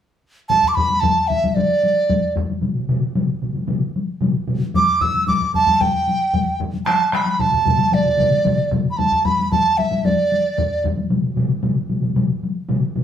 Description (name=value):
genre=japanese traditional, taiko drum ensemble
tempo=113 BPM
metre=4/4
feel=straight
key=A suspended pentatonic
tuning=A4 = 440 Hz
part: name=mellow hollow large dizi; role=melody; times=0.5-10.8 s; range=D5 to E6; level=-17 LUFS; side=right 2 dB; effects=none
part: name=taiko ensemble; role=percussion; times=0.5-13.0 s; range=none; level=-22 LUFS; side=left 3 dB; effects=none
part: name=taiko ensemble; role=percussion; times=0.5-11.0 s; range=none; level=-26 LUFS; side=left 2 dB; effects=none
part: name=solo taiko drums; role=percussion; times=2.6-13.0 s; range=none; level=-22 LUFS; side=equal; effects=none
room=wet studio reverb, RT60 0.7 s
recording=band playing live in one room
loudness=-16 LUFS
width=side -9 dB against mid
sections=0.5-13.0 A section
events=none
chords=none